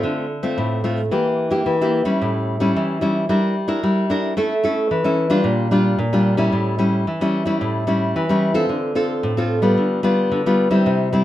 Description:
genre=samba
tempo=111 BPM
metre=4/4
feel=straight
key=D minor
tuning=A4 = 437 Hz
part: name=nylon-string guitar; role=solo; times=0.0-11.2 s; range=A2 to Bb4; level=-17 LUFS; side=equal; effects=none
room=wet studio reverb, RT60 0.6 s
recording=rough home demo mix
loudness=-17 LUFS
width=side -13 dB against mid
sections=0.0-11.2 A section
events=none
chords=0.0 Dm7; 1.1 Edim; 2.2 A7; 3.3 Em7b5/G; 4.4 A; 5.5 Gm7/Bb; 6.5 A7; 8.7 Dm7; 9.8 G7/D

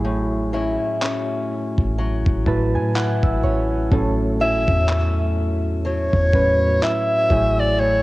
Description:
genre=contemporary R&B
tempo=62 BPM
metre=4/4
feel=swing 58% on 16ths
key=unclear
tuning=A4 = 439 Hz
part: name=soft electric-piano-like synth keys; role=accompaniment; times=0.0-8.0 s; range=A2 to A5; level=-24 LUFS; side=right 2 dB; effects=chorus, cassette tape
part: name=fingerpicked acoustic archtop guitar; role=arpeggios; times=0.0-8.0 s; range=A2 to E4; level=-26 LUFS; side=left 3 dB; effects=cassette tape, tape echo
part: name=clean 808-style bass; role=bass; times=0.0-8.0 s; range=G#1 to A2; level=-22 LUFS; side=equal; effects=none
part: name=dusty soul sampler-style drum kit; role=drums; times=1.0-7.6 s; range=handclaps, kick drum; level=-24 LUFS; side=equal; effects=cassette tape
part: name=warm alto saxophone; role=melody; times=4.4-8.0 s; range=C#5 to E5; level=-19 LUFS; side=equal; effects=cassette tape, tape echo
room=light reverb, small room reverb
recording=home recording on cassette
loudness=-17 LUFS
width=side -19 dB against mid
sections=0.0-8.0 A section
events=break 0.0-3.9; synth keys fill 2.0-3.9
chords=0.0 F#m7/A; 3.9 A6; 7.3 F#m7/A

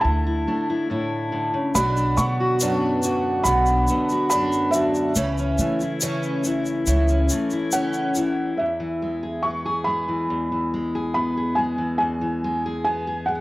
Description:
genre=acoustic folk duo or small band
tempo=70 BPM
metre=4/4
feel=straight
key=E mixolydian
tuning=A4 = 444 Hz
part: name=felt-muted upright piano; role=melody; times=0.0-13.4 s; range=E5 to C#6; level=-25 LUFS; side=right 1 dB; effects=cassette tape
part: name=fingerpicked steel-string acoustic guitar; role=accompaniment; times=0.0-13.4 s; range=E2 to G#4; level=-24 LUFS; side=left 1 dB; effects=cassette tape
part: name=upright bass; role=bass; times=0.0-7.3 s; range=B1 to C#3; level=-24 LUFS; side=equal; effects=none
part: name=picked twelve-string acoustic guitar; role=arpeggios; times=1.8-8.7 s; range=E3 to D4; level=-27 LUFS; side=right 2 dB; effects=lush chorus, cassette tape
part: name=egg shaker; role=percussion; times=1.8-8.3 s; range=none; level=-28 LUFS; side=left 2 dB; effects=none
room=moderate spring reverb, RT60 1.9 s, studio ambience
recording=home recording on cassette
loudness=-20 LUFS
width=side -19 dB against mid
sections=0.0-8.6 A section; 8.6-13.4 B section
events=none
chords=0.0 Dsus2; 1.8 Bm; 5.2 A/C#; 8.6 E

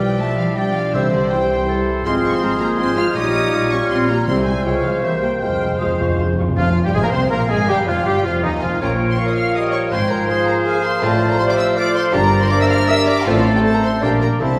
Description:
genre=quick classical-period movement for symphony orchestra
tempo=161 BPM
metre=3/4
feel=straight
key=F minor, F major from 11.0 s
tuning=A4 = 438 Hz
part: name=dark studio violin section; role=melody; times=0.0-14.6 s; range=D5 to F6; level=-29 LUFS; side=equal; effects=none
part: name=clear clarinet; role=second line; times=0.0-14.6 s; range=Eb4 to E5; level=-27 LUFS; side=equal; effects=none
part: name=rich studio violin section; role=second line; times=0.0-14.6 s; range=C4 to F6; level=-31 LUFS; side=equal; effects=none
part: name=dark studio viola section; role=accompaniment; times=0.0-14.6 s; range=E3 to F5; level=-28 LUFS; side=equal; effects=none
part: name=mellow French horn section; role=sustained chords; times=0.0-14.6 s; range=Eb3 to G4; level=-26 LUFS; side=equal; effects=none
part: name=clear trumpet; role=stabs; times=0.0-14.6 s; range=Eb4 to D5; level=-28 LUFS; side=equal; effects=none
part: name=rich studio double bass section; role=bass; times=0.0-14.6 s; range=F1 to F2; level=-27 LUFS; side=equal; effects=none
part: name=warm studio cello section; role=bass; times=0.0-14.6 s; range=Eb2 to F4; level=-26 LUFS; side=equal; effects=none
part: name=small flute group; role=second line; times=0.9-14.6 s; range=C5 to G6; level=-30 LUFS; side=equal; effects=none
part: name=warm oboe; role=second line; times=0.9-14.6 s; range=C5 to C6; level=-30 LUFS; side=equal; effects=none
part: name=timpani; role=percussion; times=0.9-1.5, 4.3-7.1, 14.4-14.6 s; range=F2 to C3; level=-25 LUFS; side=equal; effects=none
part: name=dark bassoon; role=accompaniment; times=1.0-14.6 s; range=Eb3 to C4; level=-28 LUFS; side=equal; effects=none
room=wet scoring stage reverb, RT60 1.6 s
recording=heard from further back in the room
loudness=-17 LUFS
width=mono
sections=0.0-6.6 A section; 6.6-14.6 B section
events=timpani fill 5.4-6.6, 14.4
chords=0.0 G7/B; 0.9 C; 2.1 Fm/Ab; 3.2 Gm7b5/Bb; 4.3 C; 4.7 Db; 5.0 C7; 5.4 Fm; 7.7 Fm9; 8.8 Bbm; 9.9 Fm/Ab; 11.0 F/A; 12.1 Gm; 13.3 F/A; 14.0 Gm/Bb

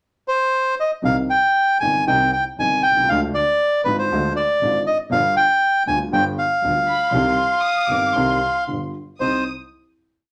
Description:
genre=tango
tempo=118 BPM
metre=4/4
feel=rubato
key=C harmonic minor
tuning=A4 = 440 Hz
part: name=bandoneon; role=melody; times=0.3-9.4 s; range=B4 to Ab5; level=-20 LUFS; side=equal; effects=none
part: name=warm baby grand piano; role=accompaniment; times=1.0-9.4 s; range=G1 to G4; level=-27 LUFS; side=equal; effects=none
part: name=warm double bass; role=bass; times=1.0-9.4 s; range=G1 to D2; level=-31 LUFS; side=equal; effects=none
part: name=rich chamber violin section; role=second line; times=6.9-9.4 s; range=B5 to Eb6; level=-30 LUFS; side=equal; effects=none
room=wet studio reverb, RT60 0.5 s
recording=none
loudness=-19 LUFS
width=mono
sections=0.0-1.0 pickup bar; 1.0-9.2 A section; 9.2-10.3 final chord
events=none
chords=0.0 N.C.; 1.0 Cm; 3.1 Ddim; 5.1 G7; 7.1 Cm; 8.7 G7; 9.2 Cm

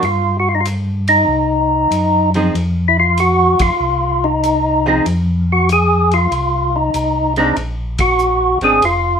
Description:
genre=soul jazz organ trio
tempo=96 BPM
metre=4/4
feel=swing 67% on 8ths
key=unclear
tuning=A4 = 438 Hz
part: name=percussive tonewheel organ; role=melody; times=0.0-9.2 s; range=Eb4 to Ab4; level=-14 LUFS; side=equal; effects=slow rotary speaker, overdrive
part: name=archtop guitar, miked and amplified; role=accompaniment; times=0.0-8.8 s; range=F3 to Ab4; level=-18 LUFS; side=right 2 dB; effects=none
part: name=mellow tonewheel organ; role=bass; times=0.0-9.2 s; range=F1 to G2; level=-18 LUFS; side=equal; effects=chorus vibrato, slow rotary speaker
part: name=warm soul drum kit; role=drums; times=0.0-9.0 s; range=hi-hat, kick drum, ride cymbal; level=-26 LUFS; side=equal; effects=none
room=moderate studio reverb, RT60 0.6 s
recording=minimal, uncompressed stereo recording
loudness=-12 LUFS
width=side -7 dB against mid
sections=0.0-9.2 A section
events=band accent 3.5-3.8, 7.9-8.2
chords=0.0 Ebadd9/G; 1.3 Cdim; 2.5 F7(no3); 7.6 Bb7(no3)

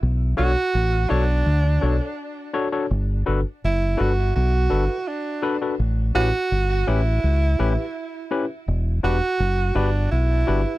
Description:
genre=lovers rock reggae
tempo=83 BPM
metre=4/4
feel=straight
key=B minor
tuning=A4 = 441 Hz
part: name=deep dub fingered electric bass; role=bass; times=0.0-10.6 s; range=E1 to D2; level=-20 LUFS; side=equal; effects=none
part: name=clear tenor saxophone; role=melody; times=0.4-10.8 s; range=D4 to F#4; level=-25 LUFS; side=right 3 dB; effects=tape echo
part: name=overdriven tine electric piano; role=accompaniment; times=0.4-10.7 s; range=C#4 to C#5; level=-24 LUFS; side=left 4 dB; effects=none
room=little or no reverb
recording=dry, close 1970s-style studio recording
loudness=-19 LUFS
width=side -17 dB against mid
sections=0.0-10.8 A section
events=none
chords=0.0 Bm7; 2.9 Gmaj7; 5.8 A7; 8.7 Em7

